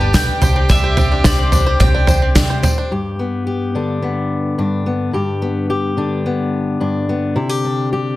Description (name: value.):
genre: indie folk with a building arrangement.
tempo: 108 BPM.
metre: 4/4.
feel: straight.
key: G major.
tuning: A4 = 442 Hz.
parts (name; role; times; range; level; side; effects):
bowl-back mandolin; melody; 0.0-2.6 s; D5 to G5; -22 LUFS; left 1 dB; tape echo.
warm fiddle; second line; 0.0-2.6 s; G4; -25 LUFS; right 2 dB; none.
picked twelve-string acoustic guitar; accompaniment; 0.0-2.9 s; G2 to C5; -24 LUFS; left 3 dB; none.
warm studio string section; sustained chords; 0.0-2.9 s; D3 to G4; -31 LUFS; left 1 dB; none.
bluegrass banjo; arpeggios; 0.0-2.9 s; B3 to C5; -24 LUFS; right 2 dB; none.
hollow-body short-scale fingered electric bass; bass; 0.0-2.6 s; G1 to C3; -17 LUFS; equal; none.
natural country drum kit; drums; 0.1-2.8 s; kick drum, snare drum, toms; -15 LUFS; right 1 dB; none.
tambourine; percussion; 0.1-2.8 s; none; -30 LUFS; left 3 dB; none.
fingerpicked steel-string acoustic guitar; accompaniment; 2.9-8.2 s; G2 to G4; -17 LUFS; left 2 dB; none.
room: light reverb.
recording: dense, heavily limited modern master.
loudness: -14 LUFS.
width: side -16 dB against mid.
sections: 0.0-2.9 A section; 2.9-8.2 B section.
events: none.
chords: 0.4 Csus2; 2.9 G; 7.4 Csus2.